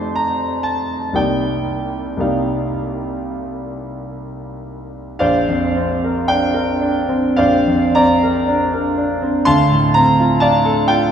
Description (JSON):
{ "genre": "classical, impressionist solo piano", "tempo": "49-65 BPM", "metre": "4/4", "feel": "rubato", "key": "Bb major", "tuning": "A4 = 436 Hz", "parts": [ { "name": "clear concert grand piano", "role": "solo", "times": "0.0-11.1 s", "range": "Bb1 to D6", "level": "-15 LUFS", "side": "equal", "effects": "none" } ], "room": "wet church reverb, RT60 3.1 s", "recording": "recorded in a church or concert hall", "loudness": "-14 LUFS", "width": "side -8 dB against mid", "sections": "0.0-5.2 A section; 5.2-11.1 B section", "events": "none", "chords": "0.0 F9; 1.2 Cm11; 5.2 Bbadd9; 9.5 Dm7" }